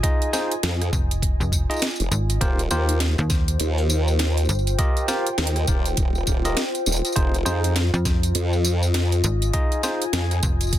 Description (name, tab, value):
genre	glitch hop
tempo	101 BPM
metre	4/4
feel	swing 61% on 16ths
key	F minor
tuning	A4 = 440 Hz
part	bell-like tine electric piano	stabs	0.0-10.0 s	Eb4 to Eb5	-28 LUFS	equal	sidechain pumping, ping-pong delay
part	drum and bass drum kit	drums	0.0-10.8 s	hi-hat, rim click, snare drum, tambourine	-26 LUFS	right 1 dB	overdrive
part	electronic kick drum	drums	0.0-10.8 s	none	-22 LUFS	equal	none
part	warbly tape-like pad	texture	0.0-10.8 s	F4 to Ab5	-30 LUFS	left 1 dB	chorus, built-in reverb, sidechain pumping
part	formant-sweep wobble bass	bass	0.6-10.4 s	Eb1 to F2	-22 LUFS	equal	chorus
part	slap-like FM bass	bass	0.9-10.8 s	F1 to F2	-22 LUFS	equal	none
room	light reverb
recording	dense, heavily limited modern master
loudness	-19 LUFS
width	side -12 dB against mid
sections	0.0-10.8 A section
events	none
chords	0.0 Fm7; 2.4 Eb69; 7.2 Fm7